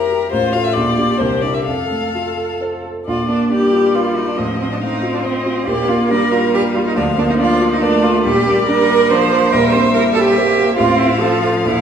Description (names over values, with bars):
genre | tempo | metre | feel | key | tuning
quick classical-period movement for piano quartet | 139 BPM | 3/4 | rubato | F major, Bb major from 3.1 s, F major from 8.2 s | A4 = 444 Hz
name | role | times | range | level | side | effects
rich violin | melody | 0.0-11.8 s | Bb4 to F5 | -22 LUFS | left 7 dB | none
clear cello | second line | 0.0-11.8 s | C4 to C5 | -17 LUFS | right 3 dB | none
rich viola | accompaniment | 0.0-11.8 s | F3 to Bb4 | -22 LUFS | right 2 dB | none
warm grand piano | accompaniment | 0.0-11.8 s | A1 to E5 | -18 LUFS | equal | none
room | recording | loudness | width
wet recital hall reverb, RT60 1.4 s | recorded in a church or concert hall | -13 LUFS | side -8 dB against mid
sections
0.0-3.1 A section; 3.1-11.8 B section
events
none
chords
0.3 F/A; 0.8 Gm/Bb; 1.2 C9; 1.7 F; 3.1 Bb; 4.4 F7/A; 5.7 Bb; 7.0 Bb/D; 8.2 Gm/Bb; 9.5 C7/Bb; 10.8 F/A